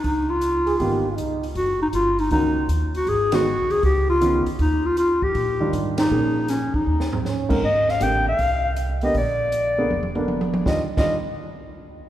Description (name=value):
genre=jazz, small-group swing and bop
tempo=158 BPM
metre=4/4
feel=swing 66% on 8ths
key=Eb major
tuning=A4 = 437 Hz
part: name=growling clarinet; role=melody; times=0.0-11.2 s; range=Db4 to G5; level=-21 LUFS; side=left 1 dB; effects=none
part: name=upright bass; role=bass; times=0.0-11.2 s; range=F1 to Bb2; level=-26 LUFS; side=equal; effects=none
part: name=open jazz drum kit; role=drums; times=0.0-11.0 s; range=crash cymbal, hi-hat, kick drum, ride cymbal, snare drum, toms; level=-28 LUFS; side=right 1 dB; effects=none
part: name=mellow trombone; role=second line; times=0.7-1.5, 7.1-7.6 s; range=C4 to Ab4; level=-29 LUFS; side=right 4 dB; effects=none
part: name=warm baby grand piano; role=accompaniment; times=0.8-11.1 s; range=Ab2 to Bb4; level=-27 LUFS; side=right 1 dB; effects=none
room=moderate church reverb, RT60 3.5 s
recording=recorded in a church or concert hall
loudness=-19 LUFS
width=side -12 dB against mid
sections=0.0-7.6 A section; 7.6-10.7 B section; 10.7-12.1 C section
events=band accent 3.3, 5.9; drum fill 6.9-7.2, 9.9-10.7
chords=0.0 Db13; 1.6 Gb6; 3.1 Abm7; 3.8 Db9; 4.6 Ebmaj9; 6.1 Bbm7; 6.9 Eb5; 7.6 Abmaj9#11; 9.1 Bb(b9); 10.7 Ebmaj9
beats=| 0.04 0.42 0.80 1.18 | 1.56 1.94 2.32 2.69 | 3.08 3.46 3.83 4.21 | 4.59 4.97 5.35 5.73 | 6.11 6.49 6.87 7.25 | 7.63 8.01 8.39 8.77 | 9.15 9.53 9.90 10.28 | 10.66 11.04